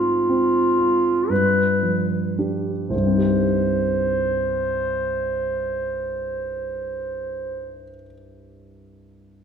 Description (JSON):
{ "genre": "classical, romantic duo for clarinet and grand piano", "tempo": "35-42 BPM", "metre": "3/4", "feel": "rubato", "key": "C minor", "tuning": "A4 = 440 Hz", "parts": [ { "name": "warm clarinet", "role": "melody", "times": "0.0-7.8 s", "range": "F4 to C5", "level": "-22 LUFS", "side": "right 1 dB", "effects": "none" }, { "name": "warm grand piano", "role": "accompaniment", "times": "0.0-9.4 s", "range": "C2 to G4", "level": "-23 LUFS", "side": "equal", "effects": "none" } ], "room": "wet scoring stage reverb, RT60 1.9 s", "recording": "none", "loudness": "-19 LUFS", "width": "side -7 dB against mid", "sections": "0.0-2.9 A section; 2.9-7.4 B section", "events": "slowing down 0.0-2.9", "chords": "0.0 Fm/Ab; 1.3 G7; 2.9 Cm" }